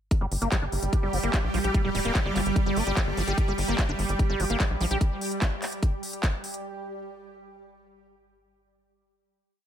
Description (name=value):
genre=psychedelic trance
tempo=147 BPM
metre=4/4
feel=straight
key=G minor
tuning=A4 = 440 Hz
part: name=bubbling stepped-filter texture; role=sustained chords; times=0.4-6.7 s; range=G3 to G4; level=-34 LUFS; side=right 1 dB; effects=chorus, built-in reverb, sidechain pumping
part: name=electronic kick drum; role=drums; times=0.1-6.3 s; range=none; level=-24 LUFS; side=equal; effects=none
part: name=techno drum kit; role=drums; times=0.1-6.6 s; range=handclaps, hi-hat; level=-32 LUFS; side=equal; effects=overdrive
part: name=granular cloud pad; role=texture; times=0.8-5.0 s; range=G3 to D6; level=-33 LUFS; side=right 3 dB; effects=built-in reverb, sidechain pumping
part: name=liquid acid bass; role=riff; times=0.2-5.0 s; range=F3 to G4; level=-32 LUFS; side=equal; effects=chorus, auto-pan, cassette tape, sidechain pumping, dub echo
part: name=tight sequencer bass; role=bass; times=0.2-5.0 s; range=D1 to Bb1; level=-29 LUFS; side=equal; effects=none
room=digital ambience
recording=faint mains hum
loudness=-24 LUFS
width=side -10 dB against mid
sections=0.1-6.6 drop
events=drop 0.1-6.6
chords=0.1 G5